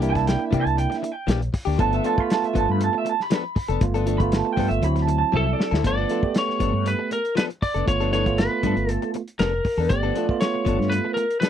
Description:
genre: straight-eighth soul blues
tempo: 118 BPM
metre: 4/4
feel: straight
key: G mixolydian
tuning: A4 = 440 Hz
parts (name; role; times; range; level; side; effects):
- bell-like tine electric piano; accompaniment; 0.0-11.2 s; F#3 to G4; -26 LUFS; right 7 dB; none
- direct-recorded clean electric guitar; stabs; 0.0-11.5 s; E3 to A4; -28 LUFS; left 10 dB; wide subtle chorus
- mellow fretless electric bass; bass; 0.0-11.0 s; F1 to C3; -24 LUFS; left 1 dB; ensemble chorus
- warm soul drum kit; drums; 0.0-11.5 s; hi-hat, kick drum, snare drum; -24 LUFS; left 1 dB; none
- electric guitar through a small old amp; second line; 0.1-5.8 s; D5 to B5; -25 LUFS; right 7 dB; none
- lightly driven lead guitar; melody; 5.4-11.5 s; A4 to D5; -25 LUFS; left 1 dB; none
room: little or no reverb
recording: dry, close 1970s-style studio recording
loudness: -20 LUFS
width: side -9 dB against mid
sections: 0.0-5.8 A section; 5.8-11.5 B section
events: clean electric guitar solo 0.0-5.8; drum fill 5.3-5.8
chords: 0.0 C9; 1.8 G9; 4.8 D9; 5.8 G9

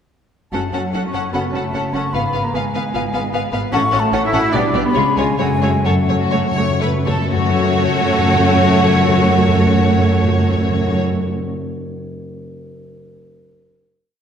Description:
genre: classical, dramatic, fast romantic movement for symphony orchestra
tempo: 117-152 BPM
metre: 4/4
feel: rubato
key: F# minor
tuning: A4 = 440 Hz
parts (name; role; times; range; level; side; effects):
- warm symphonic violin section; melody; 0.5-11.0 s; C#5 to F#5; -24 LUFS; left 3 dB; none
- mellow hollow silver concert flute; second line; 0.5-11.0 s; F#5 to E6; -22 LUFS; left 1 dB; none
- rich studio violin section; second line; 0.5-11.0 s; E#4 to C#5; -26 LUFS; left 2 dB; none
- warm symphonic viola section; accompaniment; 0.5-11.0 s; G#3 to C#4; -23 LUFS; right 1 dB; none
- warm French horn section; sustained chords; 0.5-11.0 s; G3 to F#4; -25 LUFS; left 3 dB; none
- concert harp; arpeggios; 0.5-11.4 s; F#2 to C#5; -24 LUFS; left 3 dB; none
- rich symphonic cello section; bass; 0.5-11.0 s; F#3 to E4; -23 LUFS; right 2 dB; none
- warm studio double bass section; bass; 0.5-11.0 s; F#1 to F#2; -24 LUFS; right 4 dB; none
- timpani; percussion; 5.4-11.0 s; F#2; -21 LUFS; equal; none
room: wet concert hall reverb, RT60 1.8 s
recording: none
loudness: -14 LUFS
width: side -8 dB against mid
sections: 0.5-7.3 A section; 7.3-11.2 final chord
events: slowing down 2.9-7.3; timpani fill 5.4-7.3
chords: 0.5 F#m; 2.1 Fdim/Ab; 3.7 F#m/A; 4.5 G/B; 5.0 C#7; 5.4 F#m

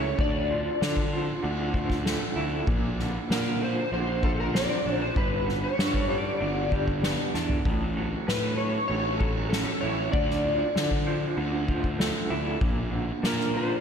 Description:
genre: psychedelic rock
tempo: 96 BPM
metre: 4/4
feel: straight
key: unclear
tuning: A4 = 440 Hz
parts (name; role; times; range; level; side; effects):
- electric slide guitar; melody; 0.0-13.8 s; A4 to D5; -30 LUFS; left 2 dB; analog chorus, ping-pong delay
- electric guitar through a small old amp; riff; 0.0-13.8 s; G2 to E4; -31 LUFS; right 2 dB; tremolo
- fuzz picked electric bass; bass; 0.0-13.7 s; G1 to D3; -30 LUFS; equal; overdrive
- tanpura; drone; 0.0-4.2 s; none; barely audible; none; none
- soft-mallet drum kit; drums; 0.2-13.7 s; kick drum, ride cymbal, snare drum, toms; -29 LUFS; equal; none
room: moderate lush hall reverb, RT60 2.3 s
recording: dreamy mix soaked in reverb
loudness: -24 LUFS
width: side -7 dB against mid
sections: 0.0-13.8 A section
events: drum fill 7.3-7.7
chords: 0.2 Dmadd9; 2.7 Bbadd9; 5.2 G; 7.7 A6; 10.1 Dmadd9; 12.6 Bb

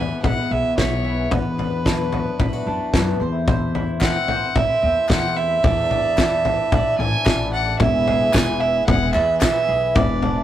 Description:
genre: indie folk with a building arrangement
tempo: 111 BPM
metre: 4/4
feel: straight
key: E mixolydian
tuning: A4 = 439 Hz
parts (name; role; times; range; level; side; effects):
- warm fiddle; melody; 0.0-10.4 s; B4 to G#5; -21 LUFS; right 3 dB; none
- fingerpicked steel-string acoustic guitar; accompaniment; 0.0-5.6 s; E2 to G#4; -31 LUFS; left 3 dB; none
- picked twelve-string acoustic guitar; accompaniment; 0.0-10.4 s; E2 to E4; -31 LUFS; left 4 dB; none
- mandolin; arpeggios; 0.0-10.4 s; B3 to D5; -30 LUFS; right 1 dB; none
- upright bass; bass; 0.0-10.4 s; E1 to F#2; -24 LUFS; left 1 dB; none
- loose indie drum kit; drums; 0.2-10.4 s; kick drum, snare drum, toms; -21 LUFS; left 1 dB; none
- group handclap; percussion; 4.0-9.5 s; none; -32 LUFS; left 2 dB; none
- hand-pumped harmonium; sustained chords; 7.8-10.4 s; E3 to G#4; -31 LUFS; left 1 dB; none
- tambourine; percussion; 8.3-9.5 s; none; -35 LUFS; right 4 dB; none
room: moderate small room reverb, RT60 0.5 s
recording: rough rehearsal-room recording, tube saturation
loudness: -17 LUFS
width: side -11 dB against mid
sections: 0.0-7.8 A section; 7.8-10.4 B section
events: none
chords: 0.0 E; 1.3 Bm/E; 3.2 Am/E; 5.6 Dsus2/E; 7.8 E

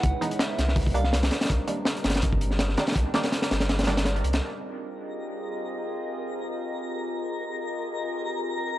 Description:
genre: drum and bass, jungle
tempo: 164 BPM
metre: 4/4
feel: swing 55% on 16ths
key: F minor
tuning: A4 = 440 Hz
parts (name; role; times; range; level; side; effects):
- soft synth bell; melody; 0.0-1.1 s; Fb5 to Gb5; -34 LUFS; right 1 dB; chorus, tremolo, dub echo
- warbly tape-like pad; sustained chords; 0.0-8.8 s; G3 to Eb5; -33 LUFS; equal; chorus, built-in reverb
- saturated sub bass; bass; 0.0-4.4 s; G1 to Db2; -26 LUFS; equal; none
- crunchy breakbeat drum kit; drums; 0.0-4.4 s; hi-hat, kick drum, snare drum; -25 LUFS; equal; none
- filtered dub chord stab; stabs; 0.2-4.0 s; Eb3 to Eb4; -33 LUFS; right 2 dB; chorus, dub echo
- twinkling granular texture; texture; 5.2-8.8 s; Bb4 to Bb5; -34 LUFS; left 1 dB; built-in reverb
room: light reverb, small room ambience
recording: dry, gritty hardware recording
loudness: -24 LUFS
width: side -14 dB against mid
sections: 0.0-4.4 A section; 4.4-8.8 B section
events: none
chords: 0.0 Dbm9; 0.8 Cm9; 4.4 Fm9

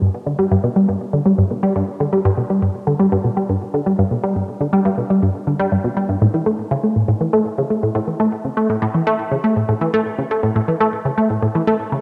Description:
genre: ambient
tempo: 121 BPM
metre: 4/4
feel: straight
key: G lydian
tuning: A4 = 440 Hz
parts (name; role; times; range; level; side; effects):
- tight sequenced synth; solo; 0.0-12.0 s; G2 to A3; -18 LUFS; equal; chorus, cassette tape, tape echo
room: wet spring reverb, RT60 2.6 s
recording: home recording on cassette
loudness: -18 LUFS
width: mono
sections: 0.0-12.0 A section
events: none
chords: none

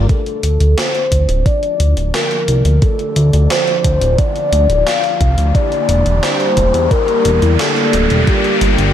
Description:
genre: synthwave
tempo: 88 BPM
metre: 4/4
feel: straight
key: D minor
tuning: A4 = 438 Hz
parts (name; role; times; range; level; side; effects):
- soft octave-layered synth lead; melody; 0.0-8.9 s; G4 to F5; -17 LUFS; left 2 dB; chorus, phaser, digital delay
- lush unison pad; sustained chords; 0.0-8.9 s; D3 to D5; -23 LUFS; right 2 dB; chorus, sidechain pumping
- mellow synth brass; stabs; 0.0-8.9 s; Bb3 to D5; -26 LUFS; left 2 dB; chorus, phaser, digital delay
- chorused synth bass; bass; 0.0-8.9 s; D1 to E2; -13 LUFS; equal; none
- electronic kick drum; drums; 0.1-8.4 s; none; -15 LUFS; equal; overdrive
- gated 80s digital drum machine; drums; 0.1-8.9 s; hi-hat, snare drum; -22 LUFS; equal; gated reverb, gated reverb snare, overdrive, high-pass filter on hats, high-pass filter on snare, high-pass filter on toms, high-pass filter on room
- riser; sound effects; 1.4-8.9 s; none; -23 LUFS; equal; none
room: moderate scoring stage reverb, RT60 2.2 s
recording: dark, warm production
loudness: -11 LUFS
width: side -10 dB against mid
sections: 0.1-8.9 A section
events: riser 1.4-8.9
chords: 0.1 Dm; 5.5 Em7b5; 8.3 Gm7

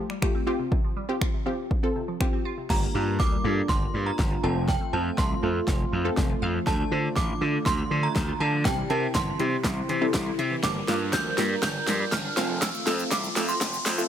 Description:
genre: dance-pop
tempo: 121 BPM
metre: 4/4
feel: straight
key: G dorian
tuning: A4 = 440 Hz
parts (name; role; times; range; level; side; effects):
- wide unison pluck; accompaniment; 0.0-14.1 s; A3 to C5; -31 LUFS; left 1 dB; none
- glassy wavetable pluck; arpeggios; 0.0-14.1 s; C3 to F5; -37 LUFS; right 1 dB; chorus, phaser, sidechain pumping, tape echo
- deep house drum kit; drums; 0.1-14.1 s; crash cymbal, finger snaps, hi-hat, kick drum, shaker, snare drum; -27 LUFS; equal; none
- synth chime; melody; 2.7-14.1 s; G5 to G6; -31 LUFS; right 3 dB; ensemble chorus
- chorused pulse-width pad; sustained chords; 2.7-14.1 s; C3 to Bb4; -33 LUFS; equal; sidechain pumping
- gritty slap bass; bass; 2.7-14.0 s; F1 to D3; -28 LUFS; equal; overdrive, sidechain pumping
- riser; sound effects; 4.9-14.1 s; none; -37 LUFS; right 1 dB; none
room: little or no reverb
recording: high-pass filter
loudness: -23 LUFS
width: side -10 dB against mid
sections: 0.0-2.7 A section; 2.7-14.1 B section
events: build-up 2.7-14.1; drum fill 2.7-14.1; filter sweep 2.7-14.1; riser 4.9-14.1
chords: 0.5 Csus4; 2.7 Gm7; 4.4 F; 6.7 Dm; 8.7 C; 10.6 Gm7; 12.4 F

